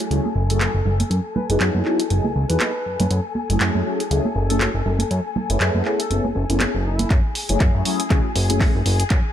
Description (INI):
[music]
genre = filtered disco house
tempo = 120 BPM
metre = 4/4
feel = swing 56% on 16ths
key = F# minor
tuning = A4 = 441 Hz
[part]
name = bright studio string section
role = sustained chords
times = 0.0-9.3 s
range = G#4 to G#5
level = -30 LUFS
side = left 5 dB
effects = vintage 12-bit sampler grit, sidechain pumping, low-pass filter
[part]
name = punchy analog drum machine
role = drums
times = 0.0-9.2 s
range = handclaps, hi-hat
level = -26 LUFS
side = equal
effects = sidechain pumping on hats, high-pass filter on hats, small room ambience, high-pass filter on snare
[part]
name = tambourine and congas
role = percussion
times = 0.0-7.1 s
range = none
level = -28 LUFS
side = right 3 dB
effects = sidechain pumping on perc, low-pass filter on perc
[part]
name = mellow synth brass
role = accompaniment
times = 0.1-8.7 s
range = F#3 to G#4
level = -24 LUFS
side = left 1 dB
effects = chorus, tremolo, phaser, sidechain pumping, low-pass filter
[part]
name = fat analog bass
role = bass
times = 0.1-9.2 s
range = F#1 to F#2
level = -21 LUFS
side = equal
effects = tube saturation, sidechain pumping, low-pass filter
[part]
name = clear horn section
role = melody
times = 0.5-7.1 s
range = E4 to B4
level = -30 LUFS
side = left 1 dB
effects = sidechain pumping, low-pass filter
[part]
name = electronic kick drum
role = drums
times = 7.1-9.2 s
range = none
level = -18 LUFS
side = equal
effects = small room ambience
[sound]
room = light reverb, small room ambience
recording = none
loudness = -18 LUFS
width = side -10 dB against mid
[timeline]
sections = 0.0-7.1 A section; 7.1-9.3 B section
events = filter sweep 0.0-7.1, 7.1-9.3; build-up 7.1-9.3; drum fill 7.1-9.3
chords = 0.0 F#m9; 1.1 Emaj7/F#; 3.1 F#m9; 4.9 Amaj9/F#; 7.1 F#m9